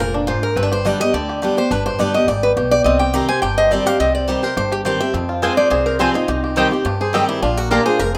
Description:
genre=bluegrass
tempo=210 BPM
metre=4/4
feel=straight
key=C minor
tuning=A4 = 440 Hz
part: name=bluegrass banjo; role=melody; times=0.0-8.2 s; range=C4 to C5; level=-26 LUFS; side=equal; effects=none
part: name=picked steel-string acoustic guitar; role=melody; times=0.0-8.2 s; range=D4 to Bb5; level=-21 LUFS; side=equal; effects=none
part: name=picked steel-string acoustic guitar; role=accompaniment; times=0.0-8.2 s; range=F2 to G4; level=-24 LUFS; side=equal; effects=none
part: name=upright bass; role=bass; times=0.0-8.2 s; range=F1 to G2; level=-27 LUFS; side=equal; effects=none
part: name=mandolin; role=stabs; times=5.4-7.8 s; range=Bb3 to Bb5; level=-23 LUFS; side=equal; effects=none
room=light reverb, small room ambience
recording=rough home demo mix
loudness=-17 LUFS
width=mono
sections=0.0-8.2 A section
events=none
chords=0.0 Bb; 0.6 G; 2.9 Cm; 5.1 Fm; 6.3 Cm; 7.4 Bb

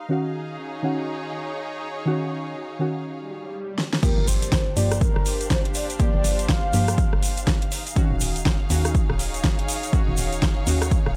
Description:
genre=deep house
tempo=122 BPM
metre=4/4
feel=swing 60% on 16ths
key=unclear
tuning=A4 = 441 Hz
part: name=rich studio string section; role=texture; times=0.0-11.2 s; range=D4 to F5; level=-35 LUFS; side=equal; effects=sidechain pumping
part: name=deep mellow chord stab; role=stabs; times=0.1-11.2 s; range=Eb3 to G4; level=-31 LUFS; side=equal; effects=chorus, sidechain pumping, tape echo
part: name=swell and impact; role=sound effects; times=3.2-6.0 s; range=none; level=-38 LUFS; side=equal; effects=none
part: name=deep house drum kit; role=drums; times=3.8-11.1 s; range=crash cymbal, hi-hat, rim click, snare drum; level=-30 LUFS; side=equal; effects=overdrive, studio reverb
part: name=mellow horn-like synth lead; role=melody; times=4.0-7.7 s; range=Bb4 to F5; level=-32 LUFS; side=equal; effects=chorus, tape echo
part: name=electronic kick drum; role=drums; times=4.0-11.0 s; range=none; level=-25 LUFS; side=equal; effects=overdrive, studio reverb
part: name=egg shaker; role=percussion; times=4.0-11.0 s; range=none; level=-35 LUFS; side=equal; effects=none
part: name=hollow knocking FM bass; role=bass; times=4.2-11.2 s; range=Eb1 to G2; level=-28 LUFS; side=equal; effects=tube saturation, sidechain pumping
room=digital ambience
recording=dry, gritty hardware recording, transformer saturation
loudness=-23 LUFS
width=mono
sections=0.0-4.0 A section; 4.0-11.2 B section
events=swell 3.2-4.0; drum fill 3.8; drop 4.0-11.2; impact 4.0-6.0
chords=0.0 Ebm7; 4.0 Gm7; 7.7 Ebm7

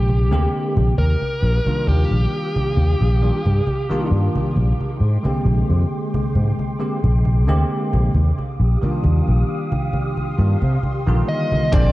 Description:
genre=vaporwave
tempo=67 BPM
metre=4/4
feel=swing 53% on 16ths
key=Eb major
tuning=A4 = 444 Hz
part: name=dark smooth lead guitar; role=melody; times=0.0-4.1, 11.3-11.9 s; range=G4 to Eb5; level=-25 LUFS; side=equal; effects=overdrive, tape echo
part: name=soft string machine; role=sustained chords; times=0.0-11.9 s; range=D3 to Eb6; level=-31 LUFS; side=equal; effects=phaser, ensemble chorus
part: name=sustaining fretless electric bass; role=bass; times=0.0-11.9 s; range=Bb1 to C3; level=-16 LUFS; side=equal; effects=ensemble chorus
part: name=electronic congas and hi-hat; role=drums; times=0.1-11.9 s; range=none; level=-24 LUFS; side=right 1 dB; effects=overdrive, vintage 12-bit sampler grit
part: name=bell-like tine electric piano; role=accompaniment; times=0.3-11.9 s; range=D3 to G5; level=-25 LUFS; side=equal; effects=ensemble chorus, diffuse ambient delay
part: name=clean electric guitar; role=riff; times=11.7-11.9 s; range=D4 to C5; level=-27 LUFS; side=right 1 dB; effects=lush chorus
part: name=electronic kick drum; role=drums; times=11.7-11.9 s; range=none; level=-16 LUFS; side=equal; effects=overdrive, vintage 12-bit sampler grit
room=light reverb, digital ambience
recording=cassette tape, nothing above 11.0 kHz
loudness=-16 LUFS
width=side -17 dB against mid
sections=0.0-11.7 A section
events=filter sweep on string machine 0.0-11.7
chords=0.0 Bb13; 1.0 Ebmaj9; 4.6 Bb13; 8.1 Ebmaj9

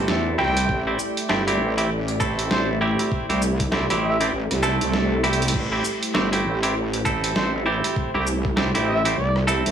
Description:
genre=glitch hop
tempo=99 BPM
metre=4/4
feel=swing 60% on 16ths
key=A minor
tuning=A4 = 438 Hz
part: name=dark analog pad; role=sustained chords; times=0.0-9.7 s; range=A3 to D5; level=-29 LUFS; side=right 1 dB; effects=chorus, vintage 12-bit sampler grit, sidechain pumping
part: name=clean electric guitar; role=stabs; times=0.0-9.7 s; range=A3 to A4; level=-24 LUFS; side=right 1 dB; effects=sidechain pumping, digital delay
part: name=wobble bass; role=bass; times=0.0-9.7 s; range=G1 to E2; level=-25 LUFS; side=equal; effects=chorus, overdrive
part: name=boom bap sampler-style drum kit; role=drums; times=0.1-9.7 s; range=crash cymbal, hi-hat, rim click, shaker, snare drum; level=-27 LUFS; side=right 1 dB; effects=small room ambience
part: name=mellow trumpet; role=melody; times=0.4-9.4 s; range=C5 to G5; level=-29 LUFS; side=equal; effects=vintage 12-bit sampler grit, digital delay
part: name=electronic kick drum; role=drums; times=0.7-8.5 s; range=none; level=-28 LUFS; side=equal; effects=small room ambience
part: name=swell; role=sound effects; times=4.6-5.5 s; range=none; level=-28 LUFS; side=right 2 dB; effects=none
room=moderate small room reverb, RT60 0.5 s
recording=studio reverb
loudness=-19 LUFS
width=side -8 dB against mid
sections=0.0-9.7 A section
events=swell 4.6-5.5; drum fill 5.2-5.5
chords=0.0 Am7

